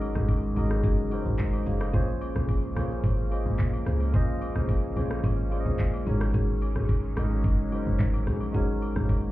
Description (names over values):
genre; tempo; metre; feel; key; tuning
amapiano; 109 BPM; 4/4; straight; unclear; A4 = 437 Hz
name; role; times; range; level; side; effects
tine electric piano; accompaniment; 0.0-9.3 s; Ab3 to F5; -32 LUFS; right 1 dB; none
lush unison pad; sustained chords; 0.0-9.3 s; Gb3 to Db4; -38 LUFS; left 1 dB; chorus, phaser, sidechain pumping
marimba with medium mallets; stabs; 0.0-9.3 s; Db4 to C5; -36 LUFS; left 6 dB; digital delay
deep log drum bass; bass; 0.0-9.3 s; Gb1 to Db2; -27 LUFS; equal; none
smooth R&B drum kit; drums; 0.0-9.3 s; handclaps, hi-hat, kick drum, rim click, shaker; -28 LUFS; equal; vintage 12-bit sampler grit
agogo bells; percussion; 0.0-9.2 s; none; -46 LUFS; left 2 dB; none
room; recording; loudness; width
digital ambience; heard muffled through a wall, club reverb, EQ, nothing above 10.7 kHz; -24 LUFS; side -16 dB against mid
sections
0.0-9.3 A section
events
none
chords
0.0 Ab7sus4; 1.9 Bbm9; 6.1 Ab7sus4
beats
0.29 0.84 1.39 | 1.94 2.49 3.04 3.59 | 4.14 4.69 5.24 5.79 | 6.34 6.89 7.44 7.99 | 8.54 9.10